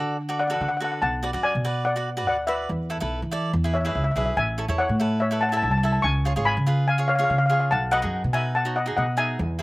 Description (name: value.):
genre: calypso.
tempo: 143 BPM.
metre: 4/4.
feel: straight.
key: unclear.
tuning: A4 = 440 Hz.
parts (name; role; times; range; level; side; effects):
steel pan; melody; 0.0-9.6 s; B4 to C#6; -24 LUFS; left 1 dB; none.
cavaquinho; accompaniment; 0.0-9.6 s; D#4 to E5; -29 LUFS; right 1 dB; slapback echo.
upright bass; bass; 0.0-9.6 s; G#1 to E3; -25 LUFS; equal; none.
room: little or no reverb.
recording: recorded outdoors, with no room sound.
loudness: -21 LUFS.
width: side -21 dB against mid.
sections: 0.0-9.6 A section.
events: none.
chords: 0.0 D; 1.0 Bm7; 2.7 Esus4; 3.5 E; 4.4 Amaj7; 6.0 C#7; 7.7 B.